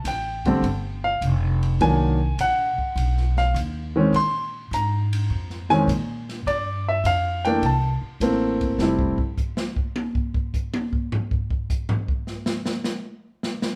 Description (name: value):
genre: jazz piano trio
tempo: 103 BPM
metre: 4/4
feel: swing 68% on 8ths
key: unclear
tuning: A4 = 440 Hz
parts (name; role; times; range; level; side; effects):
- upright bass; bass; 0.0-9.2 s; F1 to Bb2; -27 LUFS; equal; none
- open jazz drum kit; drums; 0.0-13.8 s; hi-hat, kick drum, ride cymbal, snare drum, toms; -30 LUFS; equal; none
- warm baby grand piano; melody; 0.1-9.2 s; D3 to C6; -24 LUFS; equal; none
room: moderate large studio reverb, RT60 0.9 s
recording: band playing live in one room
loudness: -23 LUFS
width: mono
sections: 0.0-13.8 A section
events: grand piano solo 0.0-13.8; drum solo 8.8-13.8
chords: 0.0 Fadd9; 1.8 Cm7b5; 3.0 B; 4.1 Bb7sus2; 6.5 G7(no3); 7.6 C6; 8.8 N.C.